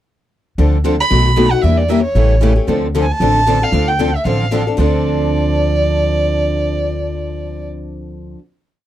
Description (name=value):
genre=acoustic string swing (jazz manouche)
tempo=229 BPM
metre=4/4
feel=swing 56% on 8ths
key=D minor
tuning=A4 = 440 Hz
part: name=picked steel-string acoustic guitar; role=accompaniment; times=0.6-8.4 s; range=B2 to A4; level=-20 LUFS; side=left 6 dB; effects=none
part: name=picked steel-string acoustic guitar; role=accompaniment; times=0.6-8.4 s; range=B2 to Bb4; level=-23 LUFS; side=right 9 dB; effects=none
part: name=upright bass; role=bass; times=0.6-8.3 s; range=A1 to E2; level=-16 LUFS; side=equal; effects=none
part: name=dark violin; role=melody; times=1.0-7.6 s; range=C#5 to B5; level=-18 LUFS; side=right 2 dB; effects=none
room=little or no reverb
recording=dry, close 1970s-style studio recording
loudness=-12 LUFS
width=side -12 dB against mid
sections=0.6-4.8 A section; 4.8-6.9 final chord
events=none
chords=0.6 Dm7; 1.1 B7; 1.6 Em7b5; 2.2 A7; 2.7 Dm7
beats=| 0.59 0.85 1.11 1.37 | 1.64 1.90 2.16 2.42 | 2.68 2.94 3.21 3.47 | 3.73 4.00 4.26 4.52 | 4.79 5.05 5.31 5.57 | 5.84 6.10 6.36 6.62